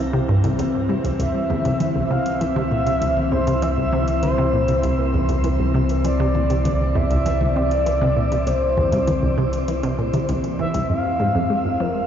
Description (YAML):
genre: ambient, sequencer-driven space music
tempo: 99 BPM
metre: 4/4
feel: straight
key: unclear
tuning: A4 = 442 Hz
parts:
  - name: evolving wavetable pad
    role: sustained chords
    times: 0.0-12.1 s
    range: E3 to C4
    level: -25 LUFS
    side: left 2 dB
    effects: chorus, built-in reverb
  - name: resonant blip pluck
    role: riff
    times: 0.0-11.9 s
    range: C2 to Ab3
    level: -23 LUFS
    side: equal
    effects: chorus, cassette tape, tape echo
  - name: round analog bass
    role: bass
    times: 0.0-12.1 s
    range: F1 to C2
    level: -24 LUFS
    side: right 1 dB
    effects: none
  - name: booming analog drum machine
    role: percussion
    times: 0.4-10.9 s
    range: hi-hat, toms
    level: -30 LUFS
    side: left 2 dB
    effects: tape echo
  - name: expressive synth lead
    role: melody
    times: 1.2-12.1 s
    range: Bb4 to F5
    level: -23 LUFS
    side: equal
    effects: chorus, tape echo
room: wet shimmer reverb, RT60 7.9 s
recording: played on a big sound system in a bare room, large studio reverb, nothing above 7.5 kHz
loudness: -18 LUFS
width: side -9 dB against mid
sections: 0.0-10.9 A section; 10.9-12.1 B section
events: filter sweep on synth arpeggio sound 0.0-10.9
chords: 0.0 C; 10.9 Fm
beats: 0.59 | 1.20 1.80 2.41 3.02 | 3.62 4.23 4.83 5.44 | 6.04 6.65 7.26 7.86 | 8.47 9.08 9.68 10.29 | 10.89 11.50